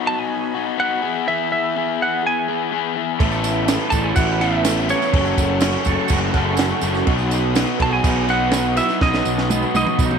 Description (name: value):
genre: indie rock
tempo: 124 BPM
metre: 4/4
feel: straight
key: unclear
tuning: A4 = 441 Hz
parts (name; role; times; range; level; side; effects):
- brassy analog pad; sustained chords; 0.0-10.2 s; F#4 to D#6; -32 LUFS; equal; chorus
- crunchy overdriven guitar; riff; 0.0-10.2 s; E3 to A4; -23 LUFS; left 15 dB; none
- semi-hollow electric guitar; melody; 0.1-10.2 s; C#5 to A5; -22 LUFS; right 1 dB; tape echo
- tine electric piano; second line; 2.2-10.2 s; C#4 to A4; -30 LUFS; right 16 dB; medium stereo tremolo
- raw garage guitar; riff; 3.2-10.2 s; B2 to A4; -24 LUFS; right 16 dB; overdrive, ensemble chorus, tape echo
- fuzz picked electric bass; bass; 3.2-10.2 s; F#1 to B1; -22 LUFS; right 1 dB; overdrive
- compact cocktail drum kit; drums; 3.2-10.2 s; crash cymbal, kick drum, snare drum, toms; -22 LUFS; right 1 dB; none
- tambourine; percussion; 3.3-10.2 s; none; -33 LUFS; right 17 dB; none
room: light reverb, small room ambience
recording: 1960s-style stereo with parts hard left and right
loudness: -17 LUFS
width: side -6 dB against mid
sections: 0.0-10.2 A section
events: drum fill 9.0-10.2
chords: 0.0 B; 1.0 E; 3.2 Asus2; 5.1 F#m; 7.1 B